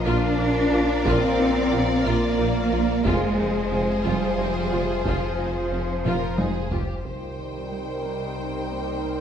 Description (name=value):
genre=cinematic, hybrid orchestral and electronic film score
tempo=60 BPM (dotted quarters)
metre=6/8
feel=straight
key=C minor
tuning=A4 = 441 Hz
part: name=warm symphonic violin section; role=melody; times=0.0-6.8 s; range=C5 to D5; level=-31 LUFS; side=left 5 dB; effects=low-pass filter
part: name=rich symphonic violin section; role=second line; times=0.0-9.2 s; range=G4 to G5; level=-32 LUFS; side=left 2 dB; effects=none
part: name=dark French horn section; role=sustained chords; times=0.0-6.7 s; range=F3 to D4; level=-28 LUFS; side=left 2 dB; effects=low-pass filter
part: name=mellow trombone section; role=sustained chords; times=0.0-6.7 s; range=C3 to Bb3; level=-32 LUFS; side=right 3 dB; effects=none
part: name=warbly tape-like pad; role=sustained chords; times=0.0-9.2 s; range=F3 to F5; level=-32 LUFS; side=left 2 dB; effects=chorus, built-in reverb, low-pass filter
part: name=rich symphonic cello section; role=bass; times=0.0-9.2 s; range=C3 to D4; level=-28 LUFS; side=right 2 dB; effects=none
part: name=sub bass with octave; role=bass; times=0.0-7.1 s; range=F1 to Bb1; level=-31 LUFS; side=equal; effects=none
part: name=clear symphonic viola section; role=accompaniment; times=0.1-9.2 s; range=Eb3 to Bb4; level=-31 LUFS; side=right 1 dB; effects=low-pass filter
part: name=warbly dusty pluck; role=arpeggios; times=0.1-9.2 s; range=C3 to Bb4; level=-35 LUFS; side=right 3 dB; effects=none
part: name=mellow tuba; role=bass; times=0.1-6.8 s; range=F1 to Bb1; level=-32 LUFS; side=right 2 dB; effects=none
part: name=rich symphonic double bass section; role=bass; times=0.1-9.2 s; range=F1 to C2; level=-33 LUFS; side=right 2 dB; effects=none
part: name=solo taiko drums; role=drums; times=1.1-8.3 s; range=none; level=-29 LUFS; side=equal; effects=none
room=wet scoring stage reverb, RT60 1.9 s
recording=recorded in a church or concert hall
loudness=-21 LUFS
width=side -8 dB against mid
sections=0.0-7.1 A section; 7.1-9.2 B section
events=drum fill 6.1-7.1; filter sweep 7.1-9.2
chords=0.0 Bb; 3.1 Fm; 7.1 Cm7